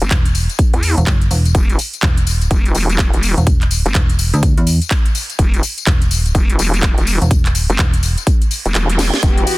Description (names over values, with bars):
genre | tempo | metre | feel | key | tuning
bass house | 125 BPM | 4/4 | swing 61% on 16ths | E minor | A4 = 438 Hz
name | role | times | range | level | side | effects
vowel-sweep wobble bass | bass | 0.0-9.5 s | E1 to E2 | -16 LUFS | equal | chorus, sidechain pumping
house drum kit | drums | 0.0-9.6 s | handclaps, hi-hat, snare drum, tambourine | -21 LUFS | left 1 dB | none
metallic FM bass | bass | 0.1-8.2 s | E1 to E2 | -15 LUFS | equal | overdrive, sidechain pumping
electronic kick drum | drums | 0.1-9.3 s | none | -14 LUFS | equal | none
reverse cymbal | sound effects | 8.6-9.2 s | none | -27 LUFS | right 8 dB | none
dark symphonic string section | sustained chords | 9.2-9.6 s | E3 to G4 | -19 LUFS | left 1 dB | sidechain pumping
room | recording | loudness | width
little or no reverb | dense, heavily limited modern master | -12 LUFS | side -21 dB against mid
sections
0.0-9.6 A section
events
reverse cymbal 8.6-9.2; kick drops out 8.7-9.2; drum fill 9.0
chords
none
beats
0.11 0.59 1.07 | 1.55 2.03 2.51 2.99 | 3.47 3.95 4.43 4.91 | 5.39 5.87 6.35 6.83 | 7.31 7.79 8.27 8.75 | 9.23